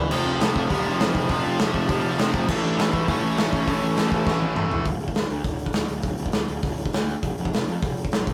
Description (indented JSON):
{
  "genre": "punk rock",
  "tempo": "202 BPM",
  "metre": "4/4",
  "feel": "straight",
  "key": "unclear",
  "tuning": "A4 = 441 Hz",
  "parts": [
    { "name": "dark smooth lead guitar", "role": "melody", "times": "0.0-4.5 s", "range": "E3 to D5", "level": "-31 LUFS", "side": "equal", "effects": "overdrive" },
    { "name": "fuzz picked electric bass", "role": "bass", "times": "0.0-8.3 s", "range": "D1 to F2", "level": "-29 LUFS", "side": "equal", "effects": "overdrive" },
    { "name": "tight distorted guitar", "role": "riff", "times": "0.1-4.8 s", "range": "F2 to A3", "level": "-34 LUFS", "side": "equal", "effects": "none" },
    { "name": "tight distorted guitar", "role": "riff", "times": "0.1-4.8 s", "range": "F2 to A3", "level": "-29 LUFS", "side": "equal", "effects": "distortion" },
    { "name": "big rock drum kit", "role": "drums", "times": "0.1-8.3 s", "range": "crash cymbal, hi-hat, kick drum, snare drum, toms", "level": "-27 LUFS", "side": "equal", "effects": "none" }
  ],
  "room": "light reverb",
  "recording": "rough rehearsal-room recording, warm saturation",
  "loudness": "-24 LUFS",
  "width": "mono",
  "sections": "0.0-4.9 A section; 4.9-8.3 B section",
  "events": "drum fill 4.3-4.9",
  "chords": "0.1 F; 2.5 A; 4.9 N.C."
}